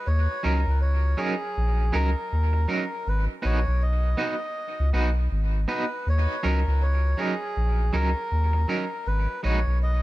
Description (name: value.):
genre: dub reggae.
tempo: 80 BPM.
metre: 4/4.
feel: swing 61% on 16ths.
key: Eb minor.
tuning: A4 = 440 Hz.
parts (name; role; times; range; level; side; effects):
melodica; melody; 0.0-10.0 s; Ab4 to Eb5; -31 LUFS; equal; tape echo.
soft dub sub bass; bass; 0.1-10.0 s; Ab1 to Eb2; -22 LUFS; equal; none.
electric guitar at the edge of break-up; accompaniment; 0.4-9.6 s; Gb3 to Cb5; -30 LUFS; right 2 dB; tremolo, high-pass filter, tape echo.
room: small room reverb.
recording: none.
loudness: -22 LUFS.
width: side -17 dB against mid.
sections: 0.1-10.0 A section.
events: none.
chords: 0.1 Ebm7; 3.1 Abm7; 6.1 Ebm7; 9.1 Abm7.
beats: | 0.06 0.81 1.56 2.31 | 3.06 3.81 4.56 5.30 | 6.05 6.80 7.55 8.30 | 9.05 9.80.